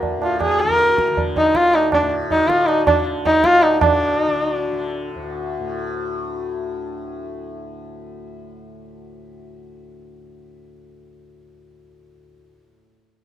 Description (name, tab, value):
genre	indian classical, Hindustani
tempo	160 BPM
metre	3/4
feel	straight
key	D raga todi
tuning	A4 = 440 Hz
part	tanpura	drone	0.0-12.7 s	D2 to D3	-28 LUFS	left 4 dB	none
part	tabla	percussion	0.0-4.0 s	none	-22 LUFS	right 6 dB	none
part	warm sarangi	melody	0.2-4.9 s	D4 to Bb4	-16 LUFS	equal	none
room	moderate studio reverb, RT60 0.6 s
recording	rough home demo mix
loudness	-16 LUFS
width	side -11 dB against mid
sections	0.0-3.8 A section; 3.8-6.0 B section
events	speeding up 0.0-6.0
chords	none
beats	0.04 | 0.42 0.80 1.18 | 1.56 1.93 2.31 | 2.69 3.06 3.44 | 3.81 4.18 4.56 | 4.93 5.30 5.67